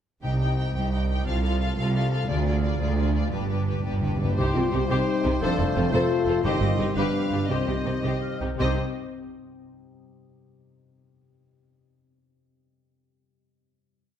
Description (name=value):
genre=cinematic, heroic adventure film score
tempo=116 BPM (dotted quarters)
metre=6/8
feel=straight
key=C harmonic minor, C dorian from 4.4 s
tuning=A4 = 439 Hz
part: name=warm symphonic violin section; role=melody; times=0.2-8.8 s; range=B4 to G5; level=-34 LUFS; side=left 2 dB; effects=none
part: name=rich symphonic violin section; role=second line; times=0.2-8.8 s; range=Eb4 to C5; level=-36 LUFS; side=left 2 dB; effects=none
part: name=warm studio viola section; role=accompaniment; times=0.2-8.8 s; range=D4 to A4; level=-34 LUFS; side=left 1 dB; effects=none
part: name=concert harp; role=arpeggios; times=0.2-9.7 s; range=F2 to Eb5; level=-33 LUFS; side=left 6 dB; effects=none
part: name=clear symphonic double bass section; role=bass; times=0.2-8.8 s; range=F1 to D2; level=-28 LUFS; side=right 2 dB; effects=none
part: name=rich symphonic cello section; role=bass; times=0.2-8.8 s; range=C2 to C3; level=-28 LUFS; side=right 2 dB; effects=none
part: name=timpani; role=percussion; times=3.3-4.3, 6.4-8.8 s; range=G2 to C3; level=-32 LUFS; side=equal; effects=none
part: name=dark clarinet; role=second line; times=4.4-8.7 s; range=G4 to A4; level=-35 LUFS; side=left 1 dB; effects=none
part: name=silver concert flute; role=second line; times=4.4-8.8 s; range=Eb5 to G5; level=-37 LUFS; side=left 3 dB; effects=none
part: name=warm oboe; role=second line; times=4.4-8.7 s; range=B4 to G5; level=-37 LUFS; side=right 1 dB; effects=none
part: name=clear trombone section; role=sustained chords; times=4.4-8.8 s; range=C3 to C4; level=-35 LUFS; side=right 4 dB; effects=none
part: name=mellow French horn section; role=sustained chords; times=4.4-8.8 s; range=C4 to G4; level=-28 LUFS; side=left 4 dB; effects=none
room=moderate scoring stage reverb, RT60 1.5 s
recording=none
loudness=-22 LUFS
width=side -9 dB against mid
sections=0.2-4.4 build; 4.4-8.6 theme; 8.6-9.7 final chord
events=build-up 0.2-4.4; timpani fill 3.3-4.4; slowing down 5.9-8.6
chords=0.2 Cm; 1.3 F/C; 2.3 Ddim; 3.3 G; 4.4 Cm; 5.4 F; 6.4 Cm/G; 7.0 G7; 7.5 Cm